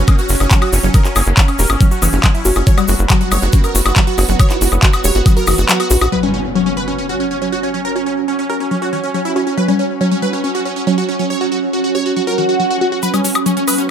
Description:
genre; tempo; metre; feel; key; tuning
psychedelic trance; 139 BPM; 4/4; straight; F# major; A4 = 440 Hz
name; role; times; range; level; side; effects
supersaw stab; melody; 0.0-13.8 s; C#4 to C#5; -20 LUFS; right 1 dB; phaser, sidechain pumping, tape echo
bubbling stepped-filter texture; sustained chords; 0.0-13.9 s; F#3 to C#4; -21 LUFS; right 2 dB; chorus, built-in reverb, sidechain pumping
tight sequencer bass; bass; 0.0-6.1 s; E1 to A#1; -15 LUFS; equal; none
vowel-sweep wobble bass; second line; 0.1-4.9 s; F#3 to E4; -29 LUFS; right 3 dB; none
woody wave-folded pluck; riff; 0.1-13.7 s; E3 to G4; -20 LUFS; moving between left 6 dB and right 8 dB; chorus, auto-pan, sidechain pumping, digital delay
big-room dance drum kit; drums; 0.1-6.1, 13.0-13.9 s; handclaps, hi-hat, woodblock; -18 LUFS; left 2 dB; high-pass filter on hats, high-pass filter on perc, high-pass filter on snare
electronic kick drum; drums; 0.1-5.3 s; none; -11 LUFS; equal; overdrive
egg shaker; percussion; 0.1-6.1, 13.0-13.9 s; none; -24 LUFS; left 4 dB; none
impact, swell and riser; sound effects; 6.1-7.8, 12.3-13.9 s; none; -22 LUFS; right 2 dB; none
room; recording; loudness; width
light reverb; none; -12 LUFS; side -9 dB against mid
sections
0.0-6.1 A section; 6.1-13.0 B section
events
drop 0.0-6.1; kick drops out 5.7-6.1; impact 6.1-7.8; swell 12.3-13.0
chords
0.0 F#5

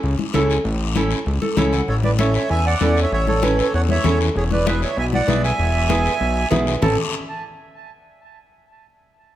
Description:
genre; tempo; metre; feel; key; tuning
latin, cumbia; 194 BPM; 4/4; straight; A major; A4 = 440 Hz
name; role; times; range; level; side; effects
fat analog bass; bass; 0.0-7.0 s; E1 to E2; -20 LUFS; equal; none
guiro; percussion; 0.0-6.9 s; none; -30 LUFS; left 8 dB; none
congas; percussion; 0.2-6.9 s; none; -25 LUFS; left 4 dB; none
nylon-string guitar; accompaniment; 0.3-7.0 s; B3 to F#5; -23 LUFS; right 2 dB; none
accordion; melody; 1.9-7.0 s; G#4 to A5; -23 LUFS; right 3 dB; tape echo
room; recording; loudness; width
moderate large studio reverb, RT60 1.4 s; none; -16 LUFS; side -12 dB against mid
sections
0.0-1.9 A section; 1.9-6.8 B section; 6.8-8.1 C section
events
nylon-string guitar fill 1.3-1.9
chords
0.0 A; 4.4 E; 6.8 A

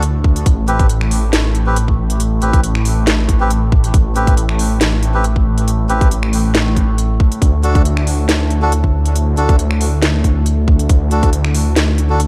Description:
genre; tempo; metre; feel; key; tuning
deep dubstep; 138 BPM; 4/4; swing 54% on 16ths, half-time; A dorian; A4 = 440 Hz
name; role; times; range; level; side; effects
overtone-sweeping drone; sustained chords; 0.0-12.3 s; A2 to A3; -26 LUFS; equal; chorus, built-in reverb
melodica; stabs; 0.0-12.2 s; C4 to B4; -24 LUFS; equal; dub echo
dark detuned saw bass; bass; 0.0-12.3 s; A1 to D2; -18 LUFS; equal; none
garage drum kit; drums; 0.0-12.3 s; finger snaps, hi-hat, snare drum; -22 LUFS; equal; none
electronic kick drum; drums; 0.2-11.3 s; none; -15 LUFS; equal; none
room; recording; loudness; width
little or no reverb; dark, warm production; -14 LUFS; mono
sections
0.0-12.3 A section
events
none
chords
0.5 Am7; 7.4 D

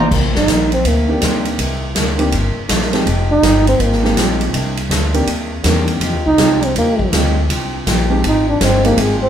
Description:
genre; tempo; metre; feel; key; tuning
jazz, big band swing; 162 BPM; 4/4; swing 64% on 8ths; C minor; A4 = 440 Hz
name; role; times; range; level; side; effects
upright bass; bass; 0.0-9.3 s; F1 to F2; -18 LUFS; equal; none
swinging big-band drum kit; drums; 0.0-9.1 s; crash cymbal, hi-hat, kick drum, ride cymbal, snare drum, toms; -19 LUFS; right 1 dB; none
picked acoustic archtop guitar; accompaniment; 0.1-9.2 s; C3 to G4; -25 LUFS; left 2 dB; none
mellow trombone; melody; 0.4-9.3 s; Ab3 to Eb4; -15 LUFS; right 1 dB; none
warm grand piano; accompaniment; 1.1-9.0 s; Eb3 to G4; -21 LUFS; right 1 dB; none
room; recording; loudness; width
moderate large studio reverb, RT60 1.0 s; band playing live in one room; -13 LUFS; side -9 dB against mid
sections
0.1-9.3 A section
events
trombone solo 0.1-9.3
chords
0.1 Cm9; 3.1 Fm9; 4.5 Cm9; 6.0 Fm9

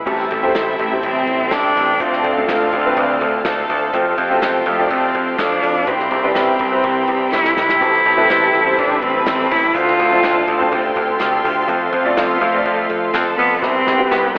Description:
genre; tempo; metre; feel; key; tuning
piano-driven pop; 124 BPM; 4/4; straight; A minor; A4 = 439 Hz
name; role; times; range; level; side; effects
clear upright piano; accompaniment; 0.0-14.4 s; A2 to D5; -24 LUFS; equal; ensemble chorus
clear symphonic string section; sustained chords; 0.0-14.4 s; C4 to C6; -28 LUFS; equal; none
electric guitar with an envelope filter; riff; 0.0-14.4 s; A2 to B4; -28 LUFS; equal; none
clear studio violin section; second line; 0.1-14.4 s; E4 to B5; -26 LUFS; equal; tape echo
overdriven picked electric bass; bass; 0.1-14.4 s; A1 to F2; -24 LUFS; equal; none
unplugged drum kit; drums; 0.1-14.4 s; crash cymbal, hi-hat, kick drum, ride cymbal, snare drum; -30 LUFS; equal; none
tambourine; percussion; 0.5-14.2 s; none; -44 LUFS; equal; none
rich cello; melody; 0.8-14.4 s; A3 to F4; -21 LUFS; equal; tape echo
room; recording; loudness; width
wet lush hall reverb, RT60 2.5 s; dreamy mix soaked in reverb, telephone sound; -16 LUFS; mono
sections
0.1-14.4 A section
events
drum fill 7.3-7.8, 13.6-14.4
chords
0.1 Am7; 2.0 Dm7; 3.9 F; 5.9 Cmaj7; 7.8 Am7; 9.7 Dm7; 11.7 F; 13.6 Cmaj7

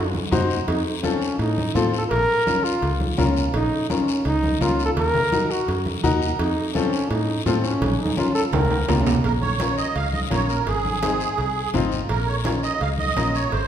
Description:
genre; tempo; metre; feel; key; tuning
latin, cumbia; 168 BPM; 4/4; straight; Bb harmonic minor, Bb minor from 9.2 s; A4 = 441 Hz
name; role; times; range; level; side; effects
clear trombone; melody; 0.0-9.0 s; Db4 to Bb4; -23 LUFS; equal; none
fingered electric bass; bass; 0.0-13.7 s; Ab1 to A2; -25 LUFS; equal; none
congas; percussion; 0.1-13.7 s; none; -29 LUFS; right 1 dB; none
clear upright piano; accompaniment; 0.3-13.4 s; C4 to C5; -26 LUFS; left 4 dB; none
guiro; percussion; 0.3-13.7 s; none; -35 LUFS; left 6 dB; none
timbales and cowbell; percussion; 0.3-13.7 s; none; -30 LUFS; right 4 dB; none
musette accordion; second line; 9.2-13.7 s; Ab4 to F5; -25 LUFS; right 5 dB; none
room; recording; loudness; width
wet recital hall reverb, RT60 1.5 s; recorded in a church or concert hall; -19 LUFS; side -9 dB against mid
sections
0.0-9.2 A section; 9.2-13.7 B section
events
drum fill 7.8-9.2; accordion solo 9.2-13.7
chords
0.0 Ebm; 0.7 F7; 2.1 Bbm; 5.0 Ebm; 6.4 F7; 7.8 Bbm; 10.7 Ab; 12.1 Bbm

